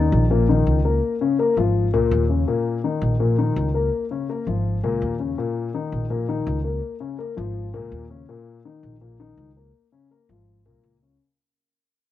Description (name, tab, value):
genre	Afro-Cuban jazz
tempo	165 BPM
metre	4/4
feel	straight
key	Db major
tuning	A4 = 438 Hz
part	dark grand piano	accompaniment	0.0-11.2 s	Bb2 to Bb4	-22 LUFS	left 5 dB	cassette tape
part	upright bass	bass	0.0-11.2 s	Ab1 to Eb2	-22 LUFS	right 1 dB	none
room	light reverb, small room ambience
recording	home recording on cassette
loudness	-20 LUFS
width	side -12 dB against mid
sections	0.0-11.2 A section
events	fade-out 0.0-11.2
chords	0.0 Eb5; 1.0 Db69; 2.5 Eb5; 3.9 Db69; 5.4 Eb5; 6.8 Db69; 8.3 Eb5; 9.7 Db6